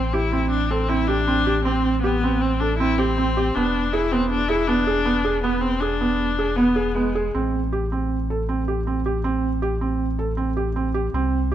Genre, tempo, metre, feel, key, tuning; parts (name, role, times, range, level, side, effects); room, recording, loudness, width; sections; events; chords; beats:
contemporary instrumental, chamber music in an uneven meter; 158 BPM; 5/4; straight; A minor; A4 = 440 Hz
clear viola; second line; 0.0-7.3 s; G#3 to E4; -23 LUFS; left 4 dB
warm sub bass; bass; 0.0-11.5 s; E1 to C2; -25 LUFS; left 1 dB
felt-muted upright piano; arpeggios; 0.1-11.5 s; B3 to A4; -23 LUFS; right 4 dB
light reverb; -19 LUFS; side -11 dB against mid
0.0-7.3 A section; 7.3-11.5 B section
0.0 Am7; 3.6 E7; 7.3 Am7
0.13 0.51 0.89 1.27 | 1.66 2.04 2.42 2.80 3.17 | 3.55 3.93 4.31 4.68 5.06 | 5.44 5.82 6.19 6.58 6.96 | 7.35 7.73 8.11 8.49 8.87 | 9.25 9.62 10.00 10.38 10.76 | 11.13 11.51